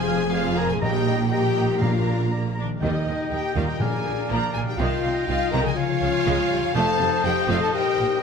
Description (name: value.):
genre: cinematic.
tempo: 122 BPM.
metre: 4/4.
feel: straight.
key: Eb major.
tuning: A4 = 440 Hz.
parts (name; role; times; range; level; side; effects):
clear symphonic violin section; melody; 0.0-8.2 s; Eb5 to Bb5; -32 LUFS; equal; none.
mellow hollow concert flute; second line; 0.0-8.2 s; Eb5 to Bb5; -31 LUFS; left 3 dB; none.
warm symphonic violin section; second line; 0.0-8.2 s; Bb4 to Bb5; -34 LUFS; left 1 dB; none.
rich symphonic viola section; accompaniment; 0.0-8.2 s; D3 to Ab4; -32 LUFS; right 3 dB; none.
mellow French horn section; sustained chords; 0.0-8.2 s; Eb4 to Bb4; -26 LUFS; left 5 dB; none.
concert harp; arpeggios; 0.0-8.2 s; F2 to Eb5; -31 LUFS; left 11 dB; none.
warm symphonic cello section; bass; 0.0-8.1 s; F2 to Eb3; -30 LUFS; right 3 dB; none.
warm symphonic double bass section; bass; 0.0-8.1 s; F1 to Eb2; -28 LUFS; right 6 dB; none.
clear oboe; second line; 0.1-8.2 s; Eb5 to Bb5; -34 LUFS; right 3 dB; none.
warm clarinet; second line; 0.1-8.2 s; Bb4 to F5; -34 LUFS; left 3 dB; none.
timpani; percussion; 0.8-4.5 s; Bb2 to Eb3; -29 LUFS; equal; none.
room: moderate scoring stage reverb, RT60 1.7 s.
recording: none.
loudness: -20 LUFS.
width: side -6 dB against mid.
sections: 0.0-8.2 A section.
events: none.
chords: 0.0 Fm; 0.8 Eb/Bb; 1.8 Bb; 2.8 Eb; 3.8 Bb; 4.8 Cm; 5.8 Db; 6.8 F7; 7.7 Eb/Bb.